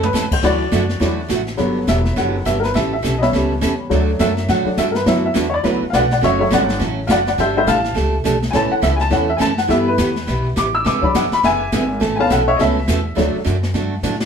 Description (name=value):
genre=country, western swing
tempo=207 BPM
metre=4/4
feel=swing 60% on 8ths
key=D major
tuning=A4 = 439 Hz
part: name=picked steel-string acoustic guitar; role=accompaniment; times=0.0-14.1 s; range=B2 to B4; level=-22 LUFS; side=right 5 dB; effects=none
part: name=warm upright piano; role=accompaniment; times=0.0-13.4 s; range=E3 to E6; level=-18 LUFS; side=left 2 dB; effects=none
part: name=upright bass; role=bass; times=0.0-14.3 s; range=E1 to A2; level=-22 LUFS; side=equal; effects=none
part: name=jazz brush drum kit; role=drums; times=0.0-14.3 s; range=brushed snare drum, crash cymbal, hi-hat, kick drum, snare drum, toms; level=-23 LUFS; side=left 1 dB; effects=none
room=moderate studio reverb, RT60 0.5 s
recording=band playing live in one room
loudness=-15 LUFS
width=side -7 dB against mid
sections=0.0-14.3 A section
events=upright piano solo 0.0-14.3; drum fill 14.0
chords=0.4 Dadd9; 1.6 Gmaj7; 2.7 A7; 3.9 D; 5.1 D6; 6.2 F#m; 7.4 Gsus2; 8.5 A; 9.7 G6; 10.9 E7; 12.0 Aadd9; 13.2 D